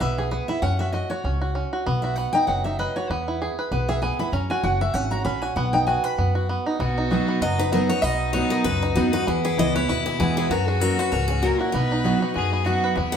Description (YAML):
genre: bluegrass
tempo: 194 BPM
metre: 4/4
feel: swing 56% on 8ths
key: B major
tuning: A4 = 440 Hz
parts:
  - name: picked steel-string acoustic guitar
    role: accompaniment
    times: 0.0-13.2 s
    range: E2 to B5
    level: -25 LUFS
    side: equal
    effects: none
  - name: bluegrass banjo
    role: arpeggios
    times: 0.0-13.2 s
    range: F#3 to B4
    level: -26 LUFS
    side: right 3 dB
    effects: none
  - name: upright bass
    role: bass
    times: 0.0-13.2 s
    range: F#1 to F#2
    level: -27 LUFS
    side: left 1 dB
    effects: none
  - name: clear fiddle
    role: second line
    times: 6.8-13.2 s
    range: D#4 to B4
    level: -29 LUFS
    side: left 5 dB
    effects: none
  - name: picked steel-string acoustic guitar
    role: melody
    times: 7.4-13.2 s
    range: D#4 to F#5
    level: -26 LUFS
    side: left 3 dB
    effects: none
room: wet large studio reverb, RT60 1.0 s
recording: band playing live in one room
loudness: -20 LUFS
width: side -8 dB against mid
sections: 0.0-6.8 A section; 6.8-13.2 B section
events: steel-string acoustic guitar solo 0.0-6.8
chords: 0.0 E; 0.6 F#5; 1.9 B; 3.1 E; 4.3 F#; 5.6 B; 9.3 E; 10.5 F#; 11.7 B